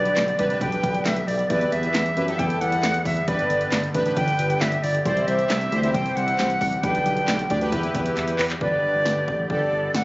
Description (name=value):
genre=synth-pop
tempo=135 BPM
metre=4/4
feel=straight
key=unclear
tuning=A4 = 440 Hz
part: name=bright silver concert flute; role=melody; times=0.0-10.0 s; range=B4 to G5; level=-24 LUFS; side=equal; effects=tape echo
part: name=analog synth brass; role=accompaniment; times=0.0-10.0 s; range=D4 to D5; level=-27 LUFS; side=equal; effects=chorus
part: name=brassy analog pad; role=sustained chords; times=0.0-10.0 s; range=D3 to G4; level=-32 LUFS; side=right 1 dB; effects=chorus
part: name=smooth gliding synth bass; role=bass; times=0.0-10.0 s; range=G1 to F#2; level=-26 LUFS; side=equal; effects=none
part: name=punchy analog drum machine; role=drums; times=0.1-10.0 s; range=handclaps, hi-hat, kick drum, snare drum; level=-28 LUFS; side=equal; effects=none
room=light reverb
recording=recorded on a phone in the room, club reverb, nothing above 7.7 kHz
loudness=-20 LUFS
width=side -21 dB against mid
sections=0.0-8.6 A section; 8.6-10.0 B section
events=drum fill 8.2-8.6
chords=0.0 G/B; 1.5 Em; 3.3 G; 5.1 C; 6.8 G/B; 7.7 Em; 8.6 G